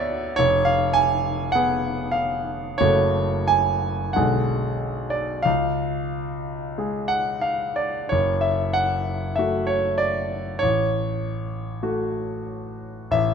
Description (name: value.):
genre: classical, romantic nocturne for solo piano.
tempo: 41-53 BPM.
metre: 4/4.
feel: rubato.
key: F# minor.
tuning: A4 = 440 Hz.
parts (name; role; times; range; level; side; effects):
clear concert grand piano; solo; 0.0-13.3 s; F1 to Ab5; -21 LUFS; equal; none.
room: moderate recital hall reverb, RT60 1.6 s.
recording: close, detailed microphones.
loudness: -21 LUFS.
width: side -6 dB against mid.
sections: 0.0-13.3 A section.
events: none.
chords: 0.4 Fdim; 2.8 F#m; 4.2 G#dim/B; 5.5 C#; 8.1 F#m; 10.6 F#m/A.